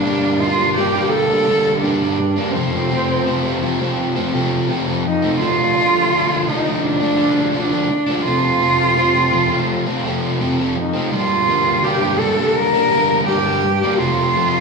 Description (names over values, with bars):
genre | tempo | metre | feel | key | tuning
rock | 84 BPM | 4/4 | straight | G minor | A4 = 440 Hz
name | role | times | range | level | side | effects
muted cello | melody | 0.0-14.6 s | C4 to Bb4 | -17 LUFS | right 1 dB | none
overdriven semi-hollow guitar | riff | 0.0-14.6 s | F2 to D4 | -18 LUFS | equal | none
room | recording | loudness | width
wet stone room reverb, RT60 1.2 s | band playing live in one room, small room ambience | -15 LUFS | side -4 dB against mid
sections
0.0-14.6 A section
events
none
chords
0.0 Gmadd9; 2.6 F; 5.4 Dm; 8.3 F; 11.1 Gm; 14.0 F